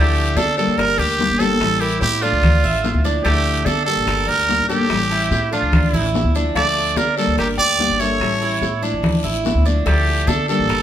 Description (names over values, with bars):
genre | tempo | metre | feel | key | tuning
latin, Cuban son and guajira | 145 BPM | 4/4 | straight | D harmonic minor | A4 = 440 Hz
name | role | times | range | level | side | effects
growling trumpet | melody | 0.0-10.8 s | F4 to D5 | -19 LUFS | right 3 dB | none
worn celesta | second line | 0.0-10.8 s | A4 to G5 | -30 LUFS | left 3 dB | none
nylon-string guitar | accompaniment | 0.0-10.8 s | D3 to G4 | -24 LUFS | left 4 dB | none
Cuban tres | arpeggios | 0.0-10.8 s | A3 to E5 | -25 LUFS | right 4 dB | none
upright bass | bass | 0.0-10.8 s | G1 to D3 | -21 LUFS | equal | none
bongos | percussion | 0.2-10.8 s | none | -30 LUFS | left 5 dB | none
congas | percussion | 0.2-10.8 s | none | -25 LUFS | left 2 dB | none
guiro | percussion | 0.4-10.8 s | none | -32 LUFS | left 5 dB | none
room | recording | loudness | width
wet studio reverb, RT60 0.6 s | band playing live in one room | -15 LUFS | side -10 dB against mid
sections
0.0-10.8 A section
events
none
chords
0.0 Dmadd9; 0.8 Gm; 1.6 A7; 2.4 Dmadd9; 4.1 Gm; 4.9 A7; 5.7 Dmadd9; 7.4 Gm; 8.2 A7; 9.0 Dmadd9